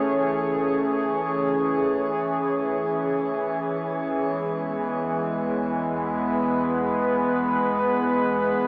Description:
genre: ambient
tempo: free time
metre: none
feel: none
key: unclear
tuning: A4 = 442 Hz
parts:
  - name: warbly tape-like pad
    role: sustained chords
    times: 0.0-8.7 s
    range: E3 to C#5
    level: -24 LUFS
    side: equal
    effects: chorus, built-in reverb, shimmer reverb
  - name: deep rumbling drone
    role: bass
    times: 0.0-8.7 s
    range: A1 to E2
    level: -49 LUFS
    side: equal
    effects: none
room: wet plate reverb, RT60 3.3 s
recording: small speaker sound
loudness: -25 LUFS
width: mono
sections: 0.0-8.7 A section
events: none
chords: 0.0 Amaj7; 3.3 E

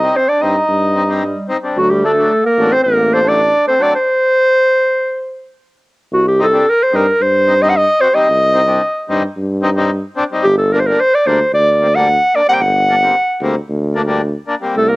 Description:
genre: klezmer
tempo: 111 BPM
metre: 4/4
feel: straight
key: C dorian sharp4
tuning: A4 = 440 Hz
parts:
  - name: warm clarinet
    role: melody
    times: 0.0-15.0 s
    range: F#4 to G5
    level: -12 LUFS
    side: equal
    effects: plate reverb
  - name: warm clarinet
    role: second line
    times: 0.0-3.9, 14.8-15.0 s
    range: F#3 to Eb4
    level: -20 LUFS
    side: right 2 dB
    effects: cassette tape, plate reverb
  - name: accordion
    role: accompaniment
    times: 0.0-14.8 s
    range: F#3 to F#4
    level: -19 LUFS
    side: left 2 dB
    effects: cassette tape, plate reverb
  - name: warm tuba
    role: bass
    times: 0.0-15.0 s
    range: G1 to G2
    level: -18 LUFS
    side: equal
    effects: none
room: moderate studio reverb, RT60 0.6 s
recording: home recording on cassette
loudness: -11 LUFS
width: side -22 dB against mid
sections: 0.0-6.1 A section; 6.1-15.0 A section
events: stop 4.0-6.1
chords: 0.0 Cm; 1.8 D; 4.0 N.C.; 6.1 Cm; 10.4 Gm

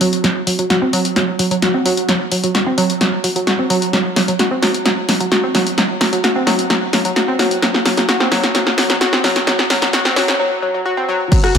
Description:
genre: driving peak-time techno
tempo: 130 BPM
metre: 4/4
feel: straight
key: unclear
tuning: A4 = 439 Hz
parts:
  - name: analog pluck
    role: riff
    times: 0.0-11.6 s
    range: E3 to F#4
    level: -17 LUFS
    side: equal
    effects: chorus, overdrive, sidechain pumping, digital delay
  - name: punchy analog drum machine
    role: drums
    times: 0.0-11.6 s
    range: crash cymbal, hi-hat, ride cymbal, rim click, snare drum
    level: -16 LUFS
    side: equal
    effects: sidechain pumping on hats, sidechain pumping on cymbals
  - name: electronic kick drum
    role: drums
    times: 11.3-11.4 s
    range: none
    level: -12 LUFS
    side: equal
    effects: none
  - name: saturated sub bass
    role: bass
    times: 11.5-11.6 s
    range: F#1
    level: -10 LUFS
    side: equal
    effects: overdrive, sidechain pumping, low-pass filter
room: wet lush hall reverb, RT60 1.9 s, digital ambience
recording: high-pass filter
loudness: -13 LUFS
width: side -7 dB against mid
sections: 0.0-11.3 A section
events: build-up 0.0-11.3; drum fill 0.0-10.4; filter sweep on synth arpeggio sound 0.0-11.3; break 10.4-11.3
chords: none

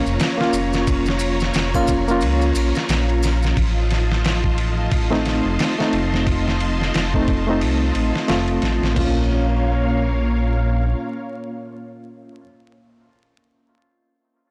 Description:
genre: trip hop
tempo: 89 BPM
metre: 4/4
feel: swing 58% on 16ths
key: Bb harmonic minor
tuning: A4 = 440 Hz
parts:
  - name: overdriven reed electric piano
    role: accompaniment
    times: 0.0-12.5 s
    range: A3 to F4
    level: -25 LUFS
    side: equal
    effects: tremolo, tape echo
  - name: string machine, cellos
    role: sustained chords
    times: 0.0-12.4 s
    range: Bb3 to Db6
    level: -28 LUFS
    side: equal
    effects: ensemble chorus, vintage 12-bit sampler grit
  - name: dark detuned saw bass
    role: bass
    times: 0.1-10.9 s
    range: F1 to Db2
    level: -23 LUFS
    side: equal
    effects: tube saturation
  - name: maracas and triangle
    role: percussion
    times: 0.1-3.5 s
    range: none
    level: -38 LUFS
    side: equal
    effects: none
  - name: dusty soul sampler-style drum kit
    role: drums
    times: 0.2-9.1 s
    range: crash cymbal, kick drum, ride cymbal, snare drum, toms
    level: -26 LUFS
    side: equal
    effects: none
room: light reverb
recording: blown-out, overdriven recording, vinyl crackle, overdrive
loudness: -20 LUFS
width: mono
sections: 0.0-9.0 A section; 9.0-11.7 B section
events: none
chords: 0.0 Bbm; 3.6 F7; 9.0 Bbm

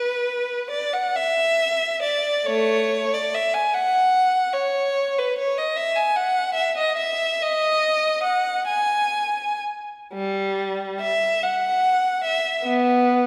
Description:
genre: classical, free, expressive piece for unaccompanied violin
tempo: 37-50 BPM (dotted quarters)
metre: 6/8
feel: rubato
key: unclear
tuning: A4 = 441 Hz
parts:
  - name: rich violin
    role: solo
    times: 0.0-13.3 s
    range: G3 to G#5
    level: -22 LUFS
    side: equal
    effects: none
room: wet scoring stage reverb, RT60 1.9 s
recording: heard from further back in the room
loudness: -22 LUFS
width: mono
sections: 0.0-13.3 A section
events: none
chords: none

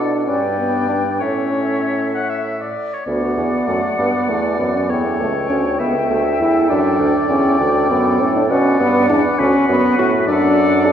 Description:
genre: quick classical-period movement for wind quintet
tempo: 66 BPM (dotted quarters)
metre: 6/8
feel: straight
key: D major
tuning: A4 = 440 Hz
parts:
  - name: concert flute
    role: melody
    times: 0.0-10.9 s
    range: E5 to G5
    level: -24 LUFS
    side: left 6 dB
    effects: none
  - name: warm oboe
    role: second line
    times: 0.0-10.9 s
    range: B4 to F#5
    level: -22 LUFS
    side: left 1 dB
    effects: none
  - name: warm French horn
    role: accompaniment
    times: 0.0-10.9 s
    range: A3 to A4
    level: -18 LUFS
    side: equal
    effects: none
  - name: warm clarinet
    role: accompaniment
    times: 0.0-10.9 s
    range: F#4 to B4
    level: -26 LUFS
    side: right 6 dB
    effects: none
  - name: mellow bassoon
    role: bass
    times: 0.0-10.9 s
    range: C#2 to B2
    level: -20 LUFS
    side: right 2 dB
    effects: none
room: wet concert hall reverb, RT60 2.4 s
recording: heard from further back in the room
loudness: -14 LUFS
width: side -9 dB against mid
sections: 0.0-3.1 A section; 3.1-10.9 B section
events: none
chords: 0.3 G; 1.2 A; 3.1 D; 4.9 A7; 6.7 D; 8.5 Bm; 10.3 D/F#

